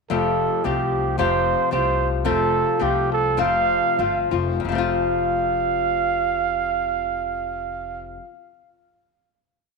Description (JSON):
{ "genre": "mexican folk, mariachi", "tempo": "88-113 BPM", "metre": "2/4", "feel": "rubato", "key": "F major", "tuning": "A4 = 439 Hz", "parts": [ { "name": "dark trumpet", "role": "melody", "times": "0.1-8.1 s", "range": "G4 to F5", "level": "-22 LUFS", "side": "right 8 dB", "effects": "none" }, { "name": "flamenco guitar", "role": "accompaniment", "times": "0.1-8.3 s", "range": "F2 to G4", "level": "-24 LUFS", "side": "left 14 dB", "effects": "none" }, { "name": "upright bass", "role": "bass", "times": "0.1-8.2 s", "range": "F1 to C2", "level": "-29 LUFS", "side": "left 1 dB", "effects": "none" } ], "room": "moderate echo chamber reverb, RT60 1.7 s, studio reverb", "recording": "1960s-style stereo with parts hard left and right", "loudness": "-19 LUFS", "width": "side -4 dB against mid", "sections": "0.1-4.7 A section; 4.7-7.3 final chord", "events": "slowing down 2.3-4.7", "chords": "0.1 Fadd9; 4.7 F" }